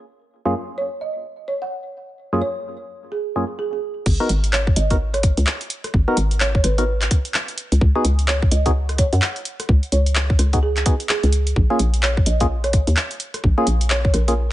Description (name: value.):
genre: UK garage, two-step garage.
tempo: 128 BPM.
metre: 4/4.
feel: swing 61% on 16ths.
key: G# dorian.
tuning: A4 = 440 Hz.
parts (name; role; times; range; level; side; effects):
percussive organ stab; stabs; 0.5-14.3 s; F#2 to A#4; -23 LUFS; equal; chorus.
folk marimba with soft mallets; melody; 0.8-14.3 s; G#4 to F#5; -27 LUFS; right 2 dB; digital delay.
hollow knocking FM bass; bass; 4.1-14.5 s; G#1 to F#2; -19 LUFS; equal; none.
electronic kick drum; drums; 4.1-14.1 s; none; -18 LUFS; equal; none.
punchy analog drum machine; drums; 4.1-14.4 s; crash cymbal, handclaps, hi-hat, rim click; -23 LUFS; equal; none.
room: little or no reverb.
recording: nothing above 10.3 kHz.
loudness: -17 LUFS.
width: side -15 dB against mid.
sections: 0.0-4.1 A section; 4.1-14.5 B section.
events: filter sweep on synth stab 0.0-4.1; drop 4.1-14.5.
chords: 0.1 F#maj9; 4.1 G#m7; 7.6 C#9sus4; 11.6 A#m7.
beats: | 0.31 0.78 1.25 1.72 | 2.19 2.65 3.12 3.59 | 4.06 4.53 5.00 5.47 | 5.94 6.41 6.87 7.34 | 7.81 8.28 8.75 9.22 | 9.69 10.15 10.62 11.09 | 11.56 12.03 12.50 12.97 | 13.44 13.90 14.37.